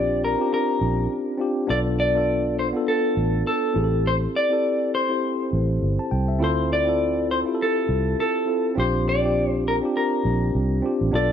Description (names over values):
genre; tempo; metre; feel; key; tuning
lush 1970s-style soul; 102 BPM; 4/4; swing 58% on 16ths; unclear; A4 = 441 Hz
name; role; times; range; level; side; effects
semi-hollow electric guitar; melody; 0.0-11.3 s; A4 to D5; -24 LUFS; left 1 dB; none
tine electric piano; accompaniment; 0.0-11.3 s; B3 to A5; -24 LUFS; left 1 dB; medium stereo tremolo
vintage muted fingered electric bass; bass; 0.0-11.3 s; G1 to D2; -24 LUFS; right 1 dB; none
room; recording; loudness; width
light reverb; none; -20 LUFS; side -8 dB against mid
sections
0.0-11.3 A section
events
none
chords
0.0 Bb69; 1.7 Bm7b5; 3.8 Am7; 6.4 Dm9; 8.8 Bb69